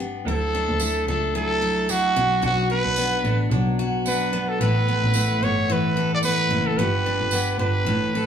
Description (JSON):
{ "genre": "acoustic pop", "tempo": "111 BPM", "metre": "4/4", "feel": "swing 60% on 16ths", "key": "D major", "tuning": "A4 = 440 Hz", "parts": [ { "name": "picked steel-string acoustic guitar", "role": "accompaniment", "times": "0.0-8.3 s", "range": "G2 to A4", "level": "-25 LUFS", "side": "left 3 dB", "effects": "none" }, { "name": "clear double bass", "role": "bass", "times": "0.0-8.3 s", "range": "F#1 to D2", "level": "-25 LUFS", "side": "right 1 dB", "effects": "none" }, { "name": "growling trumpet", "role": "melody", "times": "0.3-8.3 s", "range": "F#4 to D5", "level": "-23 LUFS", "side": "right 2 dB", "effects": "none" }, { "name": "clean electric guitar", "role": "arpeggios", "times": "0.3-8.3 s", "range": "E3 to G4", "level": "-32 LUFS", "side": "right 6 dB", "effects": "spring reverb" }, { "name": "tambourine", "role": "percussion", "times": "0.8-7.5 s", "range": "none", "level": "-31 LUFS", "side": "right 6 dB", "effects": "none" } ], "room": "moderate large studio reverb, RT60 1.0 s", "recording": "band playing live in one room, small room ambience", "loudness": "-19 LUFS", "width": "side -8 dB against mid", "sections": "0.0-8.3 A section", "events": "none", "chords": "0.3 Dadd9; 2.2 Bm; 4.6 Asus2; 6.8 G" }